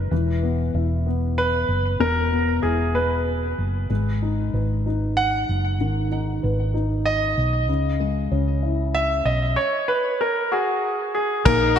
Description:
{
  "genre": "six-eight pop ballad",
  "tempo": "64 BPM (dotted quarters)",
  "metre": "6/8",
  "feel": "straight",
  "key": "unclear",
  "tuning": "A4 = 440 Hz",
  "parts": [
    { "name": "dark upright piano", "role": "accompaniment", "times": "0.0-11.8 s", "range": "B2 to B4", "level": "-26 LUFS", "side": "left 4 dB", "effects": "wide subtle chorus" },
    { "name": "hollow-body short-scale fingered electric bass", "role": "bass", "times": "0.0-11.8 s", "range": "E1 to C#2", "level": "-23 LUFS", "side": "equal", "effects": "none" },
    { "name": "bright concert grand piano", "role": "melody", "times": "1.4-11.8 s", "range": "F#4 to F#5", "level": "-22 LUFS", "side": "equal", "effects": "ping-pong delay" },
    { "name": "warm French horn section", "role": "second line", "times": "11.5-11.8 s", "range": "D#4", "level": "-24 LUFS", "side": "right 5 dB", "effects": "none" },
    { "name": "modern studio drum kit", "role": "drums", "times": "11.5-11.8 s", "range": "crash cymbal, hi-hat, kick drum", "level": "-20 LUFS", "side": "equal", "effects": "none" }
  ],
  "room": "moderate lush hall reverb, RT60 2.5 s",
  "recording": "bright 1980s-style digital production",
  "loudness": "-20 LUFS",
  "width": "side -8 dB against mid",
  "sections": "0.0-11.5 A section",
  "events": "none",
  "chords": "0.1 E5; 3.9 G#m; 7.7 C#m"
}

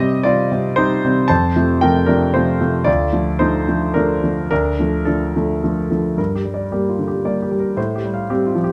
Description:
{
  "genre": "neoclassical minimalist piano",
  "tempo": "105-118 BPM",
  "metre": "3/4",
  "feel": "rubato",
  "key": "G minor",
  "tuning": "A4 = 438 Hz",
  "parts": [
    { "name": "clear concert grand piano", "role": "solo", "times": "0.0-8.7 s", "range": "D2 to A5", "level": "-18 LUFS", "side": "equal", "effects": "none" }
  ],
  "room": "light reverb",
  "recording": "none",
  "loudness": "-18 LUFS",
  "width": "mono",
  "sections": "0.0-6.2 A section; 6.2-8.7 B section",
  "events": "none",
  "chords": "0.0 Cm; 1.3 F; 2.9 Dm; 6.2 Gm; 7.8 Fadd9/A"
}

